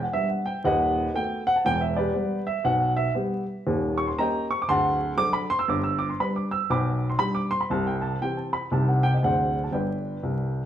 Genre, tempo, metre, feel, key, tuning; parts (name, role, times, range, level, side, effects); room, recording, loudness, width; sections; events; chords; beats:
jazz, stride piano; 118 BPM; 4/4; swing 61% on 8ths; G major; A4 = 440 Hz
warm upright piano; solo; 0.0-10.7 s; D1 to E6; -22 LUFS; equal
wet stone room reverb, RT60 1.2 s; band playing live in one room, vinyl crackle; -22 LUFS; side -10 dB against mid
0.0-10.7 A section
upright piano fill 10.2-10.7
0.0 Em7; 0.6 B7/D#; 1.6 Em7; 3.7 Eb7; 4.7 D7; 5.7 G; 6.7 G/B; 7.7 C; 8.7 Cm; 9.2 D7; 9.7 G
0.10 0.60 1.11 | 1.62 2.13 2.64 3.14 | 3.65 4.16 4.67 5.17 | 5.68 6.19 6.69 7.20 | 7.71 8.21 8.72 9.23 | 9.73 10.24